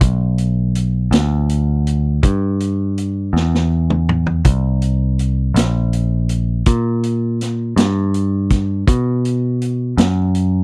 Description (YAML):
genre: slow blues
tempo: 54 BPM (dotted quarters)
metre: 12/8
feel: straight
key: E minor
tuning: A4 = 441 Hz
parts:
  - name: picked electric bass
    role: bass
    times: 0.0-10.6 s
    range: A#1 to B2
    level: -15 LUFS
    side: equal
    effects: none
  - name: vintage drum kit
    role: drums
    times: 0.0-10.5 s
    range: hi-hat, kick drum, snare drum, toms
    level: -16 LUFS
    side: equal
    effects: none
room: little or no reverb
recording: dry, close 1970s-style studio recording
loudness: -14 LUFS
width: side -31 dB against mid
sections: 0.0-10.6 A section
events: drum fill 3.3-4.4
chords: none